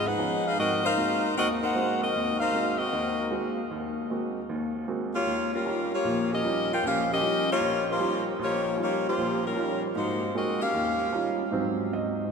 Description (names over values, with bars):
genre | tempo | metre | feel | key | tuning
jazz | 154 BPM | 4/4 | swing 66% on 8ths | unclear | A4 = 439 Hz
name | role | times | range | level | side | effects
warm saxophone section | melody | 0.0-11.3 s | G3 to G5 | -26 LUFS | left 1 dB | none
clear grand piano | accompaniment | 0.0-12.3 s | Ab1 to Eb5 | -30 LUFS | right 2 dB | none
room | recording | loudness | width
wet cathedral reverb, RT60 6.5 s | recorded in a church or concert hall | -25 LUFS | side -5 dB against mid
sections
0.0-11.5 A section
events
none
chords
0.0 Db9; 0.6 Ab9; 5.3 Eb9; 9.9 Ab9; 10.7 Eb9; 11.5 Ab7